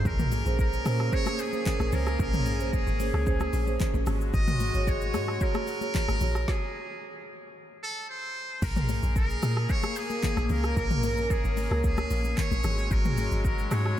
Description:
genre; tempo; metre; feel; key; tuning
amapiano; 112 BPM; 4/4; straight; Bb minor; A4 = 439 Hz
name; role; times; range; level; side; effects
trumpet with metal mute; melody; 0.0-14.0 s; Ab4 to Eb5; -34 LUFS; right 1 dB; analog delay
warm studio string section; sustained chords; 0.0-14.0 s; Gb3 to Bb4; -34 LUFS; left 1 dB; none
deep log drum bass; bass; 0.0-14.0 s; Ab1 to Bb2; -28 LUFS; equal; none
deep house drum kit; drums; 0.1-14.0 s; crash cymbal, handclaps, hi-hat, kick drum, rim click, shaker, snare drum, toms; -30 LUFS; equal; none
congas; percussion; 0.2-13.8 s; none; -38 LUFS; left 9 dB; none
marimba with medium mallets; stabs; 0.5-6.5 s; Db4 to Db5; -35 LUFS; right 8 dB; analog delay
room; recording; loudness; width
moderate cathedral reverb, RT60 4.9 s; dreamy mix soaked in reverb; -25 LUFS; side -12 dB against mid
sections
0.0-8.6 A section; 8.6-14.0 A section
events
drop 0.0-8.6, 8.6-14.0; stop 6.5-8.6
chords
0.1 Bbm9; 4.1 Ab7sus4; 8.1 N.C.; 8.6 Bbm7; 12.6 Ab7sus4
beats
| 0.05 0.59 1.12 1.66 | 2.19 2.73 3.27 3.80 | 4.34 4.87 5.41 5.95 | 6.48 7.02 7.55 8.09 | 8.62 9.16 9.70 10.23 | 10.77 11.30 11.84 12.37 | 12.91 13.45 13.98

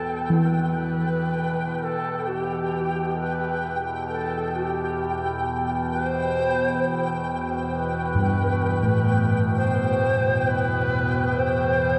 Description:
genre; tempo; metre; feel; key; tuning
dark ambient drone; 66 BPM; 4/4; straight; E minor; A4 = 440 Hz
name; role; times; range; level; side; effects
bright reedy long shakuhachi; melody; 0.0-12.0 s; G4 to C5; -29 LUFS; equal; delay
gamelan-type bossed gongs; arpeggios; 0.0-12.0 s; G2 to E4; -27 LUFS; equal; none
overtone-sweeping drone; drone; 0.0-12.0 s; E2 to B2; -30 LUFS; equal; chorus, built-in reverb
flickering grainy texture; texture; 0.0-12.0 s; G5; -32 LUFS; equal; built-in reverb
room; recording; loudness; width
wet cathedral reverb, RT60 5.0 s; dark, warm production; -24 LUFS; mono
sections
0.0-12.0 A section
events
fade-in on synth drone 0.0-12.0; fade-in on shakuhachi 0.0-12.0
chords
0.0 Em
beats
0.46 1.37 | 2.28 3.19 4.09 5.00 | 5.91 6.82 7.73 8.64 | 9.55 10.46 11.37

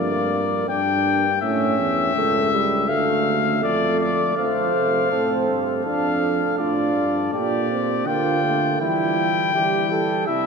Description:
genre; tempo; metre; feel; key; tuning
classical, imitative canzona for brass ensemble; 82 BPM; 4/4; straight; D minor; A4 = 440 Hz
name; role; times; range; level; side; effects
clear trumpet; melody; 0.0-10.5 s; D5 to G5; -22 LUFS; left 6 dB; none
mellow trombone; accompaniment; 0.0-10.5 s; G3 to D4; -24 LUFS; right 1 dB; none
mellow tuba; bass; 0.0-10.5 s; C#2 to E3; -26 LUFS; right 2 dB; none
mellow flugelhorn; second line; 4.4-10.5 s; E4 to C5; -25 LUFS; right 5 dB; none
room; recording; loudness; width
wet cathedral reverb, RT60 7.0 s; minimal, uncompressed stereo recording; -18 LUFS; side -5 dB against mid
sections
0.0-4.4 A section; 4.4-10.5 B section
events
none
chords
0.0 Gm; 1.4 A; 2.9 Dm; 4.4 F; 5.9 Dm/F; 7.3 Gm/Bb; 8.8 Emadd11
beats
0.69 | 1.42 2.15 2.89 3.63 | 4.37 5.12 5.86 6.60 | 7.33 8.07 8.81 9.55 | 10.28

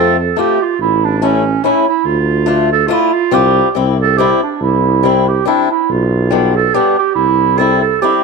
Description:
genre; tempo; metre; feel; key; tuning
alpine folk; 141 BPM; 3/4; straight; unclear; A4 = 438 Hz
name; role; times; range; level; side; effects
mellow clarinet; melody; 0.0-8.2 s; C#4 to A4; -14 LUFS; right 12 dB; slapback echo
fingerpicked swing-style acoustic guitar; accompaniment; 0.0-8.2 s; G3 to F4; -16 LUFS; left 13 dB; none
mellow tuba; bass; 0.0-8.0 s; A1 to F2; -16 LUFS; equal; none
room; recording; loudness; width
light reverb, small room ambience; 1960s-style stereo with parts hard left and right; -11 LUFS; side -4 dB against mid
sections
0.0-8.2 A section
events
none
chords
0.0 F; 0.8 A; 2.1 Dm; 3.3 Csus4; 3.8 C; 5.9 G7/B; 7.2 C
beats
0.37 | 0.80 1.22 1.64 | 2.06 2.49 2.91 | 3.33 3.76 4.19 | 4.62 5.05 5.48 | 5.91 6.33 6.76 | 7.18 7.61 8.03

